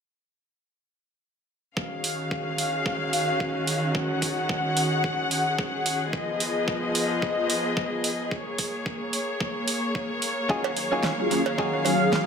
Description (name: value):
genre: nu-disco, nu disco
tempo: 110 BPM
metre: 4/4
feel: swing 56% on 16ths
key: Eb minor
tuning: A4 = 440 Hz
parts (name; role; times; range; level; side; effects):
- warm studio string section; sustained chords; 1.8-12.3 s; Eb3 to Gb5; -26 LUFS; left 1 dB; sidechain pumping
- electronic kick drum; drums; 1.8-12.3 s; none; -32 LUFS; equal; high-pass filter on kick, small room ambience, high-pass filter on room
- pop drum kit; drums; 2.0-12.2 s; hi-hat, snare drum; -29 LUFS; right 2 dB; small room ambience, analog delay
- direct-recorded clean electric guitar; riff; 10.5-11.9 s; Db4 to Ab4; -28 LUFS; left 1 dB; analog chorus, vintage 12-bit sampler grit, analog delay
- cowbell; percussion; 10.6-12.0 s; none; -32 LUFS; right 10 dB; analog delay
- mellow synth brass; accompaniment; 11.2-12.2 s; Gb3 to F5; -23 LUFS; equal; chorus, sidechain pumping, analog delay
room: moderate echo chamber reverb, RT60 1.9 s, digital ambience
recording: echo-heavy mix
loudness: -24 LUFS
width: side -6 dB against mid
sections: 1.8-12.3 A section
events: none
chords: 1.8 Ebm11; 6.1 Fm7b5; 8.3 Bbm7; 10.5 Ebm11